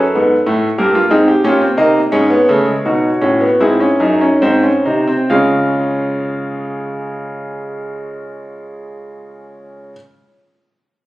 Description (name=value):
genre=classical, baroque-style 4-part fugue for grand piano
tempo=66-97 BPM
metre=4/4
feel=straight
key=unclear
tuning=A4 = 440 Hz
part: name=clear baby grand piano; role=solo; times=0.0-10.0 s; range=F#2 to E#5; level=-13 LUFS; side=equal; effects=none
room=moderate recital hall reverb, RT60 1.4 s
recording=recorded on a phone in the room, club reverb, compression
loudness=-11 LUFS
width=side -17 dB against mid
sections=0.0-5.3 A section; 5.3-8.9 B section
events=slowing down 0.0-5.3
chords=0.0 D#dim/F# (rootless); 0.8 D#7/G; 2.1 G#7sus4; 3.6 G#7; 5.3 C#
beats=0.16 0.79 1.45 | 2.13 2.85 3.60 4.42 | 5.29 6.20 7.11 8.02